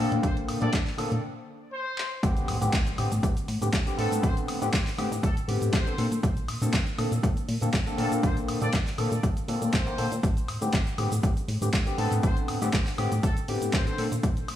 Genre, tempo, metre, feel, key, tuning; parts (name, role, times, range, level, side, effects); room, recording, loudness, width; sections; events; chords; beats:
filtered disco house; 120 BPM; 4/4; swing 54% on 16ths; A phrygian; A4 = 440 Hz
bright trumpet section; melody; 0.0-14.0 s; A4 to D5; -37 LUFS; left 1 dB; sidechain pumping, low-pass filter, analog delay
overdriven tine electric piano; accompaniment; 0.0-14.1 s; D3 to Bb4; -30 LUFS; left 1 dB; phaser, sidechain pumping, low-pass filter
plucky analog bass; bass; 0.0-14.6 s; A1 to Bb2; -30 LUFS; equal; sidechain pumping, low-pass filter
punchy analog drum machine; drums; 0.1-14.6 s; handclaps, hi-hat, shaker, woodblock; -34 LUFS; left 1 dB; sidechain pumping on hats, sidechain pumping on perc
electronic kick drum; drums; 0.2-14.3 s; -26 LUFS; equal
impact; sound effects; 2.2-4.2 s; -37 LUFS; equal
light reverb, digital ambience; studio ambience; -24 LUFS; side -11 dB against mid
0.0-2.2 A section; 2.2-14.6 B section
filter sweep 0.0-2.2; break 1.2-2.2; drum fill 2.0; drop 2.2-14.6; impact 2.2-4.2
0.0 Bbadd9; 2.2 Am11; 6.0 Bbmaj9; 10.2 Am11; 14.0 N.C.
| 0.23 0.73 1.23 1.73 | 2.23 2.73 3.23 3.73 | 4.23 4.73 5.23 5.73 | 6.23 6.73 7.23 7.73 | 8.23 8.73 9.23 9.73 | 10.23 10.73 11.23 11.73 | 12.23 12.73 13.23 13.73 | 14.23